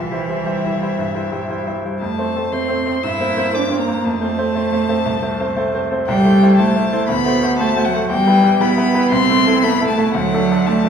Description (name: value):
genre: quick classical-period movement for piano trio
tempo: 118 BPM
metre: 4/4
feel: rubato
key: unclear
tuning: A4 = 440 Hz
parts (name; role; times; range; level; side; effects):
- warm violin; melody; 0.0-10.9 s; E5 to E6; -22 LUFS; left 7 dB; none
- rich cello; second line; 0.0-10.9 s; E3 to E4; -17 LUFS; right 3 dB; none
- bright grand piano; accompaniment; 0.0-10.9 s; C2 to C5; -20 LUFS; equal; none
room: wet recital hall reverb, RT60 1.6 s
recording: heard from further back in the room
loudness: -14 LUFS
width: side -7 dB against mid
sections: 0.0-10.9 A section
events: none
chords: 0.0 C; 2.0 F; 3.0 C7/G; 4.1 F (rootless); 6.1 Am/C; 7.1 D7; 8.1 Em; 9.1 Am/C; 10.2 D